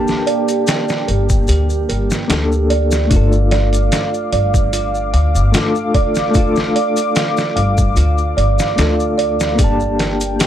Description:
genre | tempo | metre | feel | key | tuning
trip hop | 74 BPM | 4/4 | swing 53% on 16ths | G minor | A4 = 442 Hz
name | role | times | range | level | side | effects
reed electric piano | accompaniment | 0.0-10.5 s | A3 to A5 | -20 LUFS | left 3 dB | medium tremolo, tape echo
dark analog pad | sustained chords | 0.0-10.5 s | Bb3 to D6 | -23 LUFS | left 1 dB | chorus
music box | arpeggios | 0.0-10.5 s | F4 to F5 | -21 LUFS | right 7 dB | vintage 12-bit sampler grit, analog delay
trip hop sampler-style drum kit | drums | 0.1-10.5 s | hi-hat, kick drum, snare drum | -18 LUFS | equal | none
maracas | percussion | 0.1-10.5 s | none | -29 LUFS | left 4 dB | none
upright bass | bass | 1.1-10.4 s | G1 to D2 | -16 LUFS | equal | none
room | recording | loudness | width
little or no reverb | dry, gritty hardware recording | -13 LUFS | side -10 dB against mid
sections
0.0-10.5 A section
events
none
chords
0.0 Gmadd9; 3.1 Dm/G; 9.6 Gmadd9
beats
0.67 1.48 2.29 | 3.10 3.92 4.73 5.54 | 6.35 7.16 7.97 8.78 | 9.59 10.40

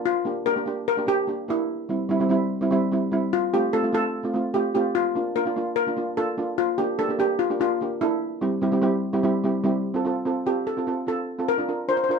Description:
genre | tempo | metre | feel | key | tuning
calypso | 147 BPM | 4/4 | straight | F major | A4 = 440 Hz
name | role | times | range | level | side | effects
steel pan | accompaniment | 0.0-12.2 s | G3 to Bb4 | -24 LUFS | right 2 dB | none
steel pan | melody | 0.1-12.2 s | E4 to C5 | -24 LUFS | left 2 dB | none
room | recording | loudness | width
moderate small room reverb, RT60 0.6 s | dark, warm production | -22 LUFS | side -5 dB against mid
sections
0.0-9.8 A section; 9.8-12.2 B section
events
steel pan solo 9.8-12.2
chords
0.1 Gm7; 1.7 C/G; 3.3 F; 5.0 Bb; 6.6 Gm7; 8.2 C/G; 9.8 F; 11.5 Bb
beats
| 0.05 0.46 0.87 1.28 | 1.69 2.10 2.50 2.91 | 3.32 3.73 4.14 4.54 | 4.95 5.36 5.77 6.18 | 6.58 6.99 7.40 7.81 | 8.22 8.62 9.03 9.44 | 9.85 10.26 10.67 11.07 | 11.48 11.89

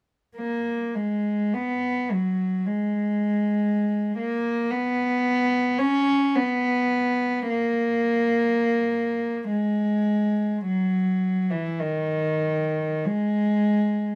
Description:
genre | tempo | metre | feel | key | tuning
classical, free, expressive piece for unaccompanied cello | 37-59 BPM | 4/4 | rubato | G# minor | A4 = 442 Hz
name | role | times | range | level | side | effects
warm cello | solo | 0.4-14.2 s | D#3 to C#4 | -24 LUFS | equal | none
room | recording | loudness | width
little or no reverb | close, detailed microphones | -24 LUFS | mono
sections
0.4-9.5 A section; 9.5-14.2 B section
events
none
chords
none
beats
| 0.38 1.56 2.68 3.70 | 4.73 5.80 6.93 8.11 | 9.50 10.66 11.79 13.05

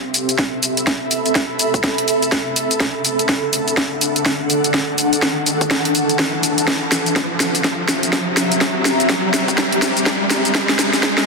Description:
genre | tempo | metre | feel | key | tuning
bass house | 124 BPM | 4/4 | swing 61% on 16ths | unclear | A4 = 440 Hz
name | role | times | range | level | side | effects
riser | sound effects | 0.5-11.3 s | none | -24 LUFS | right 1 dB | none
ethereal airy pad | texture | 0.0-11.3 s | C4 to B5 | -20 LUFS | equal | ensemble chorus, built-in reverb, tremolo, sidechain pumping
garage drum kit | drums | 0.1-11.3 s | hi-hat, shaker, snare drum | -18 LUFS | equal | overdrive
electronic kick drum | drums | 0.4-11.1 s | none | -22 LUFS | equal | overdrive, high-pass filter on kick
room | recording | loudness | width
moderate plate reverb, RT60 2.0 s | dense, heavily limited modern master, high-pass filter | -15 LUFS | side -3 dB against mid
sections
0.0-11.3 A section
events
build-up 0.0-11.3; drum fill 0.0-11.3; riser 0.5-11.3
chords
0.0 Amadd9; 2.8 D; 6.7 C7; 10.5 Fsus2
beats
0.39 | 0.87 1.35 1.84 2.32 | 2.81 3.29 3.77 4.26 | 4.74 5.22 5.71 6.19 | 6.68 7.16 7.64 8.13 | 8.61 9.10 9.58 10.06 | 10.55 11.03

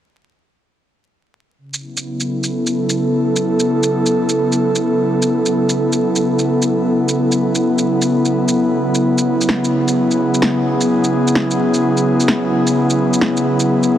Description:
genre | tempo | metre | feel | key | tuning
future garage | 129 BPM | 4/4 | swing 66% on 16ths | F# minor | A4 = 438 Hz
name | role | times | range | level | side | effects
airy breathy pad | sustained chords | 1.9-14.0 s | C#3 to A4 | -14 LUFS | equal | chorus
electronic shaker and snare drum | drums | 1.7-13.9 s | none | -20 LUFS | right 1 dB | vintage 12-bit sampler grit
room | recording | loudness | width
moderate huge ambient reverb, RT60 4.7 s | heavily compressed radio sound, vinyl crackle | -14 LUFS | side -10 dB against mid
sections
1.6-14.0 A section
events
none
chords
1.6 F#m; 9.0 E69/C#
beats
| 1.59 2.06 2.52 2.99 | 3.45 3.92 4.38 4.85 | 5.31 5.78 6.24 6.71 | 7.17 7.64 8.10 8.57 | 9.03 9.50 9.96 10.43 | 10.89 11.36 11.82 12.29 | 12.75 13.22 13.68

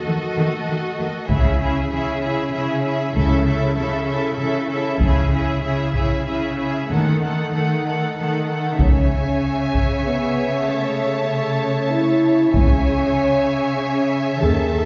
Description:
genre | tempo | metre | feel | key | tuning
cinematic, epic orchestral film score | 96 BPM | 3/4 | straight | C# minor | A4 = 439 Hz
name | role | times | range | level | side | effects
rich symphonic violin section | second line | 0.0-14.9 s | G#4 to F#5 | -29 LUFS | equal | none
rich studio viola section | accompaniment | 0.0-14.9 s | A3 to C#5 | -28 LUFS | equal | none
rich studio cello section | bass | 0.1-14.9 s | C#3 to D#3 | -26 LUFS | equal | none
dark studio double bass section | bass | 1.3-9.4, 12.5-14.9 s | C#2 to D#2 | -25 LUFS | equal | none
taiko ensemble | drums | 1.3-13.7 s | none | -24 LUFS | equal | none
clear symphonic violin section | melody | 8.8-14.9 s | G#5 to A5 | -33 LUFS | equal | none
mellow French horn section | sustained chords | 8.8-14.9 s | A3 to G#4 | -23 LUFS | equal | none
room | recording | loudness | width
wet scoring stage reverb, RT60 1.5 s | heard from further back in the room, nothing above 7.5 kHz | -20 LUFS | mono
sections
0.0-8.8 A section; 8.8-14.9 B section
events
build-up 0.0-8.8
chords
0.0 D#dim; 1.3 C#m; 6.9 D#dim; 8.8 C#m; 10.7 A/C#; 12.5 C#m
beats
0.06 0.68 | 1.29 1.91 2.53 | 3.15 3.77 4.39 | 5.01 5.63 6.26 | 6.89 7.53 8.17 | 8.80 9.43 10.05 | 10.67 11.29 11.92 | 12.53 13.15 13.78 | 14.42

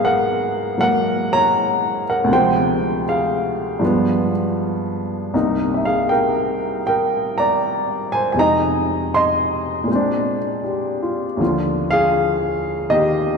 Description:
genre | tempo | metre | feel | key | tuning
solo jazz | 79 BPM | 4/4 | swing 68% on 8ths | Eb major | A4 = 438 Hz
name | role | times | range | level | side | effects
warm upright piano | solo | 0.0-13.4 s | C2 to C6 | -17 LUFS | equal | none
room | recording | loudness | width
wet church reverb, RT60 3.4 s | recorded in a church or concert hall | -17 LUFS | side -5 dB against mid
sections
0.0-13.4 A section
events
none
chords
0.0 Abm9; 2.3 Dm7b5; 3.8 G7b9; 5.3 Cm7; 8.4 Fm7; 9.9 Bb9; 11.4 Ebmaj9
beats
0.02 0.78 1.54 | 2.30 3.06 3.82 4.58 | 5.33 6.09 6.85 7.61 | 8.37 9.12 9.88 10.64 | 11.39 12.15 12.91

